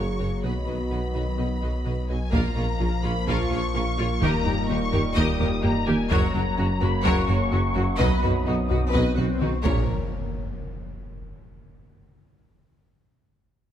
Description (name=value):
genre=cinematic, hybrid orchestral and electronic film score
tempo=127 BPM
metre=4/4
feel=straight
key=Bb phrygian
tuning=A4 = 439 Hz
part: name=clear symphonic violin section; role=melody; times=0.0-9.9 s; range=Ab5 to F#6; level=-32 LUFS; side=left 3 dB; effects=low-pass filter
part: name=clear symphonic violin section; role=second line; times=0.0-9.9 s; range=Db4 to F5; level=-32 LUFS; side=left 3 dB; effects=none
part: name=bright symphonic viola section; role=accompaniment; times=0.0-9.9 s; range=Gb3 to G4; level=-33 LUFS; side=equal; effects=low-pass filter
part: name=hollow soft pad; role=sustained chords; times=0.0-9.9 s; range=F3 to F5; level=-33 LUFS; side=left 2 dB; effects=chorus, low-pass filter
part: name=mellow French horn section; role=sustained chords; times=0.0-9.8 s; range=Bb3 to Ab4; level=-35 LUFS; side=left 4 dB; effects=low-pass filter
part: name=warm trombone section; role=sustained chords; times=0.0-9.8 s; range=Gb2 to B3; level=-34 LUFS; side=right 5 dB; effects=low-pass filter
part: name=thumb-piano-like synth pluck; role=arpeggios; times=0.0-9.6 s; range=Eb3 to B4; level=-34 LUFS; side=left 2 dB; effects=none
part: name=pure sine sub bass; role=bass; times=0.0-9.9 s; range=Eb1 to B1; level=-30 LUFS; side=equal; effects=none
part: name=rich symphonic cello section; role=bass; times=0.0-9.9 s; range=Eb2 to B2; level=-32 LUFS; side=right 1 dB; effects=none
part: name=rich symphonic double bass section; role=bass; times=0.0-9.9 s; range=Gb1 to Eb2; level=-31 LUFS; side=right 3 dB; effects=none
part: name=warm tuba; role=bass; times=0.0-9.8 s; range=Gb1 to Eb2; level=-32 LUFS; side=right 3 dB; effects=none
part: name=taiko ensemble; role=drums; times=2.3-10.6 s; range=none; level=-28 LUFS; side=left 1 dB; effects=none
part: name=swell and impact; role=sound effects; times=8.6-11.5 s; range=none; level=-32 LUFS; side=left 1 dB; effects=none
room=light reverb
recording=close, detailed microphones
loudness=-21 LUFS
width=side -10 dB against mid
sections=0.0-2.3 A section; 2.3-9.9 B section; 9.9-11.8 C section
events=filter sweep 2.3-9.9; swell 8.6-9.9; drum fill 9.2-9.9; impact 9.9-11.8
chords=0.4 B; 2.3 Bbm; 4.2 Eb; 6.1 Gb; 8.0 B; 9.7 Bbm; 9.9 N.C.